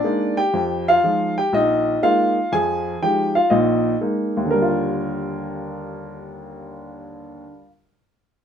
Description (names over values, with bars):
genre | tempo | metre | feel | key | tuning
solo jazz | 121 BPM | 4/4 | swing 66% on 8ths | Eb major | A4 = 440 Hz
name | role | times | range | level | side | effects
warm upright piano | solo | 0.0-7.7 s | Bb1 to Ab5 | -18 LUFS | equal | none
room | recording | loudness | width
light reverb | minimal, uncompressed stereo recording | -17 LUFS | side -8 dB against mid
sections
0.0-4.5 A section; 4.5-8.4 B section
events
none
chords
0.0 Bb7sus4; 0.5 Fm7; 1.5 Bb7sus4; 2.5 Fm7; 3.5 Bb7sus4; 4.5 Ebmaj9